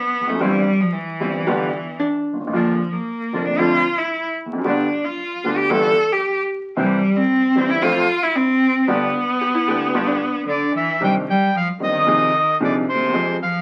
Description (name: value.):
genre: tango.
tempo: 113 BPM.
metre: 4/4.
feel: rubato.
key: unclear.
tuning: A4 = 439 Hz.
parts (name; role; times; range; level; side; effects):
clear cello; second line; 0.0-13.6 s; C3 to A4; -22 LUFS; equal; none.
warm upright piano; accompaniment; 0.2-13.4 s; F1 to A4; -24 LUFS; equal; none.
bandoneon; stabs; 0.4-10.2 s; F3 to G4; -31 LUFS; equal; none.
archtop guitar, miked and amplified; second line; 1.5-2.4, 9.4-11.0 s; B3 to G4; -27 LUFS; equal; none.
bandoneon; melody; 10.5-13.6 s; C5 to G5; -21 LUFS; equal; none.
room: wet studio reverb, RT60 0.7 s.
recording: very old 78 rpm record, vinyl crackle.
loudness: -19 LUFS.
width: mono.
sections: 0.0-11.0 A section; 11.0-13.6 B section.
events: cello solo 0.0-11.0.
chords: 0.4 C/G; 1.5 G; 2.5 Bb; 3.6 F6; 4.7 G; 5.7 Em/G; 6.8 C; 7.8 F; 8.9 G; 11.0 Cmadd9; 12.1 Ab6/C.